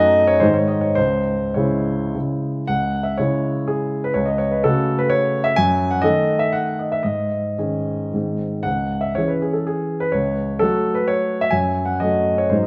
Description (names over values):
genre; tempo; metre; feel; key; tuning
classical, romantic triple-time dance for piano with dotted rhythms; 98-138 BPM; 3/4; rubato; C# minor; A4 = 439 Hz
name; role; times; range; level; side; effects
warm grand piano; solo; 0.0-12.7 s; C#2 to G#5; -20 LUFS; equal; none
room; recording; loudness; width
moderate recital hall reverb, RT60 1.8 s; none; -20 LUFS; mono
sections
0.0-2.7 A section; 2.7-12.7 A section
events
none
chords
0.4 G#5; 1.0 C#m; 4.2 F#m/C#; 5.6 D#dim/F#; 7.1 G#sus4; 8.1 G#; 8.7 C#m; 10.1 F#m/C#; 11.5 F#m69